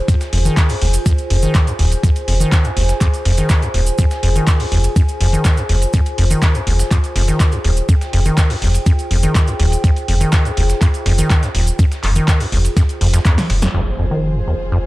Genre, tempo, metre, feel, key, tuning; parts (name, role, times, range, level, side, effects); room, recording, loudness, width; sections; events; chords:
acid house; 123 BPM; 4/4; straight; F minor; A4 = 442 Hz
warbly tape-like pad; texture; 0.0-14.9 s; F4 to Ab5; -25 LUFS; left 1 dB; chorus, built-in reverb, sidechain pumping
acid bass, square; riff; 0.1-14.8 s; Eb2 to F3; -19 LUFS; equal; tube saturation, sidechain pumping
dusty soul sampler-style drum kit; drums; 0.1-13.6 s; hi-hat, ride cymbal, snare drum; -32 LUFS; right 2 dB; sidechain pumping on cymbals, high-pass filter on cymbals, high-pass filter on snare, sidechain pumping on hats, high-pass filter on hats, high-pass filter on room
electro analog drum machine; drums; 0.1-13.7 s; handclaps, hi-hat, snare drum; -24 LUFS; equal
electronic kick drum; drums; 0.1-13.4 s; -13 LUFS; equal
cabasa; percussion; 0.1-13.7 s; -29 LUFS; right 4 dB
round analog bass; bass; 0.3-14.9 s; Eb1 to F1; -16 LUFS; equal; sidechain pumping
warm studio string section; sustained chords; 13.7-14.9 s; F3 to C5; -26 LUFS; equal; sidechain pumping
impact; sound effects; 13.7-14.9 s; -26 LUFS; equal
little or no reverb; dark, warm production; -13 LUFS; side -18 dB against mid
0.0-13.7 A section; 13.7-14.9 B section
drum fill 13.4-13.7; band accent 13.6; impact 13.7-14.9
0.0 Fm